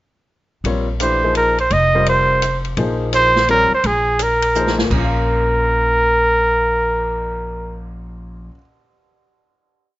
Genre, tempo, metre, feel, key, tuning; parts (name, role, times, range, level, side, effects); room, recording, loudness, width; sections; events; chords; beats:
modal jazz; 169 BPM; 3/4; swing 65% on 8ths; Bb dorian; A4 = 440 Hz
upright bass; bass; 0.6-8.5 s; F1 to Bb1; -22 LUFS; equal
open jazz drum kit; drums; 0.6-7.0 s; crash cymbal, cymbal swell, hi-hat, kick drum, ride cymbal, snare drum; -26 LUFS; equal
warm grand piano; accompaniment; 0.7-8.6 s; Bb2 to F5; -24 LUFS; left 3 dB
mellow trumpet; melody; 1.0-7.8 s; Ab4 to Eb5; -15 LUFS; right 1 dB; plate reverb
light reverb; rough home demo mix, nothing above 7.6 kHz; -14 LUFS; side -16 dB against mid
0.6-4.9 A section; 4.9-7.0 final chord
drum fill 4.5-4.9
0.6 Bb9sus4; 4.9 Bbm
| 0.65 1.00 1.36 | 1.71 2.06 2.42 | 2.77 3.13 3.48 | 3.84 4.19 4.55 | 4.90 5.25 5.61 | 5.96 6.32 6.67